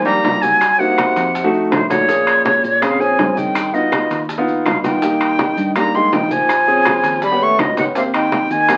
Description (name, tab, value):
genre	Afro-Cuban jazz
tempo	164 BPM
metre	4/4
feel	straight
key	F minor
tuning	A4 = 439 Hz
part	bright silver concert flute	melody	0.0-8.8 s	C5 to Db6	-18 LUFS	equal	none
part	breathy tenor saxophone	second line	0.0-8.8 s	A2 to A3	-25 LUFS	equal	none
part	fingered electric bass	bass	0.0-8.8 s	Ab1 to Bb2	-31 LUFS	equal	none
part	warm concert grand piano	accompaniment	0.1-8.8 s	G3 to Ab4	-22 LUFS	equal	none
part	bongos	percussion	0.1-8.8 s	none	-28 LUFS	equal	none
part	congas	percussion	0.1-8.8 s	none	-28 LUFS	equal	none
part	maracas	percussion	0.1-8.8 s	none	-41 LUFS	equal	none
part	timbales	percussion	0.2-8.8 s	none	-25 LUFS	equal	none
part	claves	percussion	0.6-8.8 s	none	-31 LUFS	equal	none
room	wet studio reverb, RT60 0.5 s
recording	very old 78 rpm record, vinyl crackle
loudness	-16 LUFS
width	mono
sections	0.0-8.8 A section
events	none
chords	0.0 Fm11; 0.6 Cm7b5; 1.3 F7b9; 2.1 Bbm9; 3.6 Gaug7; 5.0 Cm7; 6.5 Bbm9; 7.2 Ebaug7; 8.0 Abmaj9